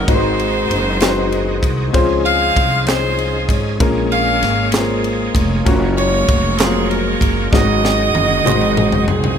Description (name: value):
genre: slow gospel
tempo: 64 BPM (dotted quarters)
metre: 6/8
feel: straight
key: unclear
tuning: A4 = 441 Hz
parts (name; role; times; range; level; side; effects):
- edgy saxophone section; melody; 0.0-9.4 s; C4 to F5; -18 LUFS; right 1 dB; none
- clear upright piano; accompaniment; 0.0-9.4 s; Ab2 to Eb5; -19 LUFS; left 3 dB; none
- bright tonewheel organ; sustained chords; 0.0-9.4 s; Eb3 to Ab4; -26 LUFS; right 4 dB; slow rotary speaker, chorus vibrato
- upright bass; bass; 0.0-9.4 s; F1 to Db2; -20 LUFS; equal; none
- crisp fusion drum kit; drums; 0.1-9.4 s; kick drum, ride cymbal, snare drum, toms; -19 LUFS; equal; none
- group handclap; percussion; 1.0-8.8 s; none; -24 LUFS; right 5 dB; none
room: light reverb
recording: none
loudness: -13 LUFS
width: side -8 dB against mid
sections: 0.0-9.4 A section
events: drum fill 7.5-9.4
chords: 0.1 Ab7; 1.9 Dbmaj7; 3.8 Bbm7; 5.7 Gbmaj7; 7.5 Ab7sus4; 8.5 Ab7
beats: | 0.08 1.01 | 1.94 2.87 | 3.81 4.74 | 5.67 6.60 | 7.53 8.46